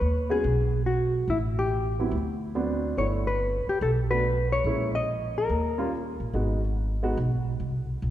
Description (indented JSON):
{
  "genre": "jazz",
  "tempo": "142 BPM",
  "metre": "4/4",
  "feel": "swing 67% on 8ths",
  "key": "unclear",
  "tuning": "A4 = 439 Hz",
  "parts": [
    { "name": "hollow-body jazz guitar", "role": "melody", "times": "0.0-5.9 s", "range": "E4 to D#5", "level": "-28 LUFS", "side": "left 2 dB", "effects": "none" },
    { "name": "upright bass", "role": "bass", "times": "0.0-8.1 s", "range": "G1 to D#2", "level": "-27 LUFS", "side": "equal", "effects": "none" },
    { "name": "warm upright piano", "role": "accompaniment", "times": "0.3-7.2 s", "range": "F#3 to F#4", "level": "-32 LUFS", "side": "right 2 dB", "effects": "none" }
  ],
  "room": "wet concert hall reverb, RT60 2.4 s",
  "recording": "recorded in a church or concert hall",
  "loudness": "-24 LUFS",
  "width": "side -12 dB against mid",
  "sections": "0.0-8.1 A section",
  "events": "none",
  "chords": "0.0 Eadd9 (rootless); 1.3 Am7; 2.1 D6; 3.0 G69; 4.7 A#m7b5; 5.5 D#7; 6.3 G#m7",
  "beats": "0.01 0.43 0.86 | 1.28 1.70 2.12 2.55 | 2.97 3.39 3.81 4.24 | 4.66 5.08 5.50 5.92 | 6.34 6.76 7.18 7.60 | 8.02"
}